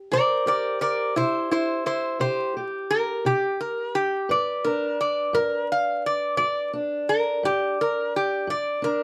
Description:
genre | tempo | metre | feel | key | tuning
acoustic country blues, solo or duo | 58 BPM (dotted quarters) | 12/8 | straight | unclear | A4 = 440 Hz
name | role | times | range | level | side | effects
fingerpicked steel-string acoustic guitar | accompaniment | 0.0-9.0 s | G2 to C5 | -30 LUFS | equal | none
metal-body resonator slide guitar | melody | 0.1-9.0 s | E4 to F5 | -25 LUFS | equal | none
room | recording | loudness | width
little or no reverb | close, detailed microphones, vinyl crackle | -25 LUFS | mono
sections
0.0-9.0 A section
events
resonator guitar played with a steel bar solo 0.0-9.0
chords
0.0 C; 4.3 G

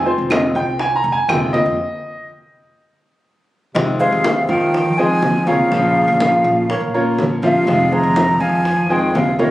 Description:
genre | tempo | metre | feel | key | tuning
latin, Cuban son and guajira | 122 BPM | 4/4 | straight | F minor | A4 = 440 Hz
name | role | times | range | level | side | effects
fingerpicked acoustic archtop guitar | accompaniment | 0.0-9.5 s | C3 to F4 | -20 LUFS | left 1 dB | none
warm baby grand piano | arpeggios | 0.0-9.5 s | F3 to Bb5 | -19 LUFS | right 1 dB | none
upright bass | bass | 0.0-9.5 s | F1 to F3 | -25 LUFS | equal | none
congas | percussion | 0.1-9.5 s | none | -24 LUFS | left 1 dB | none
bongos | percussion | 0.3-9.5 s | none | -27 LUFS | left 2 dB | none
claves | percussion | 0.3-1.5 s | none | -25 LUFS | equal | none
breathy mellow silver concert flute | melody | 3.7-9.5 s | Eb5 to Bb5 | -18 LUFS | equal | none
warm duduk | second line | 3.7-9.5 s | C3 to F3 | -24 LUFS | right 1 dB | none
room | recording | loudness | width
moderate large studio reverb, RT60 1.4 s | recorded on a phone in the room, studio ambience, compression | -14 LUFS | side -15 dB against mid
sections
0.0-3.8 A section; 3.8-9.5 B section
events
grand piano solo 0.0-3.8; stop 1.8-3.8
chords
0.0 Fm7; 1.8 N.C.; 3.8 Fm7; 5.7 Bbm; 7.7 Fm7

